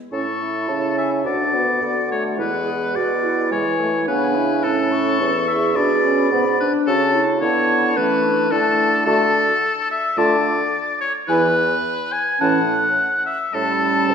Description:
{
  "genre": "quick classical-period movement for wind quintet",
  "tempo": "107 BPM",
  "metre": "4/4",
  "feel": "straight",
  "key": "A major",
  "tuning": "A4 = 440 Hz",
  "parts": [
    { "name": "bright silver concert flute", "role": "melody", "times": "0.1-14.1 s", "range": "F#5 to C#6", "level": "-26 LUFS", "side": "left 5 dB", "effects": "none" },
    { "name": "bright oboe", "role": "second line", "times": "0.1-14.1 s", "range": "A4 to G#5", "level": "-20 LUFS", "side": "left 2 dB", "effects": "none" },
    { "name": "clear French horn", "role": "accompaniment", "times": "0.1-14.1 s", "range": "E3 to E4", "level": "-24 LUFS", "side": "equal", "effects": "none" },
    { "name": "dark clarinet", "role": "accompaniment", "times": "0.1-14.1 s", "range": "C#4 to G#4", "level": "-24 LUFS", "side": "right 5 dB", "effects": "none" },
    { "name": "warm bassoon", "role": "bass", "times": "0.1-14.1 s", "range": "C#2 to E3", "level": "-24 LUFS", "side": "right 1 dB", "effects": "none" }
  ],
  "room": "wet scoring stage reverb, RT60 1.8 s",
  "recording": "recorded in a church or concert hall",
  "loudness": "-16 LUFS",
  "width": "side -7 dB against mid",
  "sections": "0.1-14.1 A section",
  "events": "none",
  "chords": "0.1 A; 1.3 Bm/D; 2.4 E7; 4.6 A; 5.8 G#dim; 6.9 A/C#; 9.1 D; 10.2 Dm; 11.3 E; 12.4 A; 13.5 A7",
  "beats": "| 0.12 0.69 1.25 1.82 | 2.39 2.95 3.52 4.07 | 4.63 5.20 5.76 6.31 | 6.87 7.41 7.96 8.51 | 9.07 9.63 10.18 10.73 | 11.29 11.85 12.41 12.97 | 13.54 14.10"
}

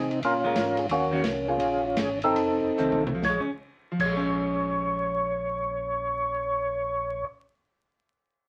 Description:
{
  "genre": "soul jazz organ trio",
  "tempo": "128-183 BPM",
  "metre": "4/4",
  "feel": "swing 64% on 8ths",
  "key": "Bb minor",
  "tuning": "A4 = 444 Hz",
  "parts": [
    { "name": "percussive tonewheel organ", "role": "melody", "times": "0.0-7.2 s", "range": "Bb3 to Db5", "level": "-28 LUFS", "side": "equal", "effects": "chorus vibrato, slow rotary speaker" },
    { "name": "mellow tonewheel organ", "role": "bass", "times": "0.0-7.2 s", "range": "F1 to C3", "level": "-42 LUFS", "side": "equal", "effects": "overdrive, chorus vibrato, slow rotary speaker" },
    { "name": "vintage drum kit", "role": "drums", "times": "0.1-4.1 s", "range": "crash cymbal, hi-hat, kick drum, ride cymbal, snare drum, toms", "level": "-37 LUFS", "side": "equal", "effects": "none" },
    { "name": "vintage hollow-body jazz guitar", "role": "accompaniment", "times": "0.4-7.4 s", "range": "Eb3 to Gb4", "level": "-33 LUFS", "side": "equal", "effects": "none" }
  ],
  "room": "moderate studio reverb, RT60 0.5 s",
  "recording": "vinyl crackle",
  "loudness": "-27 LUFS",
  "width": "mono",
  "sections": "0.0-3.2 A section; 3.2-7.0 B section",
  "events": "slowing down 0.2-3.2; drum fill 2.8-3.2",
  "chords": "0.2 Bbm7; 0.9 Ebm7; 1.6 Bbm7; 2.4 F7; 3.2 Bbm7",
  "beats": "| 0.23 0.56 0.89 1.24 | 1.59 1.97 2.36 2.78 | 3.23 3.69 4.16 4.63 | 5.10 5.57 6.04 6.50"
}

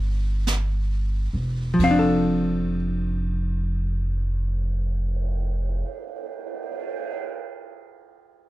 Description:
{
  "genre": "jazz ballad",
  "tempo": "43 BPM",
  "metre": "4/4",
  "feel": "swing 66% on 8ths",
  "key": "F major",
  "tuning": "A4 = 444 Hz",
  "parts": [
    { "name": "hollow-body jazz guitar", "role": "accompaniment", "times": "0.0-6.0 s", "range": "F3 to F5", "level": "-21 LUFS", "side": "equal", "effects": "none" },
    { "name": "upright bass", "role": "bass", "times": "0.0-5.8 s", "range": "E1 to G1", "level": "-24 LUFS", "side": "equal", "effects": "none" },
    { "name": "jazz brush drum kit", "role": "drums", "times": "0.5-7.1 s", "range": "cymbal swell, hi-hat, kick drum, ride cymbal, snare drum", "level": "-33 LUFS", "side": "right 5 dB", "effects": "none" }
  ],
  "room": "light reverb",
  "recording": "dark, warm production",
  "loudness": "-22 LUFS",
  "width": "side -16 dB against mid",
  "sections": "0.0-1.8 A section; 1.8-7.4 B section",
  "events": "slowing down 0.0-1.8",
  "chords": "0.0 C7b9; 1.8 F6",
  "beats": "0.47 | 1.79 3.19 4.59 6.00"
}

